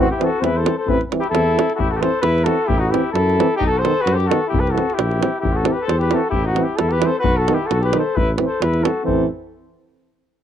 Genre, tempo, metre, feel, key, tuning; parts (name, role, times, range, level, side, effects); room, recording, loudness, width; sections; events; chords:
balkan folk, Balkan brass band; 132 BPM; 2/4; straight; A dorian sharp4; A4 = 438 Hz
mellow flugelhorn; melody; 0.0-9.3 s; F#4 to C5; -21 LUFS; left 1 dB; plate reverb
mellow trumpet; second line; 0.0-9.3 s; C4 to A4; -25 LUFS; left 8 dB; cassette tape, plate reverb
warm euphonium; accompaniment; 0.0-9.3 s; B3 to C4; -25 LUFS; left 8 dB; cassette tape, plate reverb
warm euphonium; accompaniment; 0.0-9.3 s; D#3 to E3; -25 LUFS; right 10 dB; cassette tape, plate reverb
dark tuba; bass; 0.0-9.3 s; A1 to F#2; -21 LUFS; equal; tube saturation
davul; percussion; 0.2-9.3 s; -23 LUFS; right 2 dB
moderate booth ambience, RT60 0.2 s; home recording on cassette; -16 LUFS; side -10 dB against mid
0.0-1.8 A section; 1.8-9.1 B section
0.0 Am; 3.6 B; 4.5 C; 5.4 Am; 7.2 B; 8.2 Am